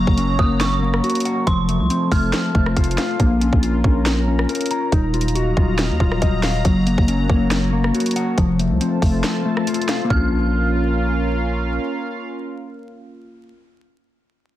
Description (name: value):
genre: hip hop, trap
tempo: 139 BPM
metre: 4/4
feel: half-time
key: Bb harmonic minor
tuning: A4 = 440 Hz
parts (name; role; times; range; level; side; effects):
- dark detuned synth bell; second line; 0.0-3.2, 10.1-11.4 s; C6 to F6; -26 LUFS; right 3 dB; chorus, ping-pong delay
- sweeping resonant pad; sustained chords; 0.0-13.6 s; Gb3 to Bb5; -27 LUFS; equal; chorus
- mellow electric guitar; arpeggios; 0.0-13.6 s; F3 to Bb5; -21 LUFS; left 2 dB; low-pass filter, ping-pong delay
- growling 808-style bass; bass; 0.0-11.8 s; Eb1 to Eb2; -21 LUFS; equal; none
- drum and bass drum kit; drums; 0.1-10.2 s; hi-hat, kick drum, rim click, snare drum, toms; -20 LUFS; equal; none
room: light reverb, digital ambience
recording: dense, heavily limited modern master, vinyl crackle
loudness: -16 LUFS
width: side -13 dB against mid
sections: 0.0-10.1 A section; 10.1-13.6 B section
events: break 9.2-10.1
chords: 0.0 Gb; 1.5 F; 3.2 Bbm; 4.9 Ebmadd9; 6.6 Gb; 8.4 F; 10.1 Bbm